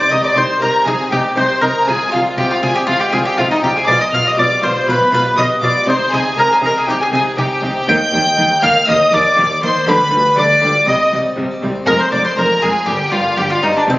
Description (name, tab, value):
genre	classical, baroque-style concerto movement with solo episodes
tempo	120 BPM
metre	4/4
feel	straight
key	C minor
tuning	A4 = 441 Hz
part	mandolin	melody	0.0-14.0 s	C4 to G5	-16 LUFS	equal	none
part	rich chamber violin section	melody	0.0-14.0 s	C5 to G6	-18 LUFS	left 1 dB	none
part	rich studio violin section	second line	0.0-14.0 s	C4 to G5	-19 LUFS	equal	none
part	harpsichord	accompaniment	0.0-14.0 s	F2 to Eb5	-25 LUFS	equal	none
part	rich chamber viola section	accompaniment	0.1-14.0 s	Eb3 to F4	-25 LUFS	equal	none
part	clear chamber double bass section	bass	0.1-14.0 s	F1 to Eb2	-26 LUFS	equal	none
part	dark chamber cello section	bass	0.1-14.0 s	F2 to Eb3	-22 LUFS	equal	none
room	moderate scoring stage reverb, RT60 2.2 s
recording	recorded on a phone in the room, studio reverb, compression, nothing above 7.5 kHz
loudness	-12 LUFS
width	side -18 dB against mid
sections	0.0-14.0 A section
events	none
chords	0.0 Cm; 1.9 Dm7b5/C; 3.9 G7/B; 5.9 Cm; 7.9 Eb; 9.9 G7/D; 10.9 C5; 11.9 Fm; 12.9 G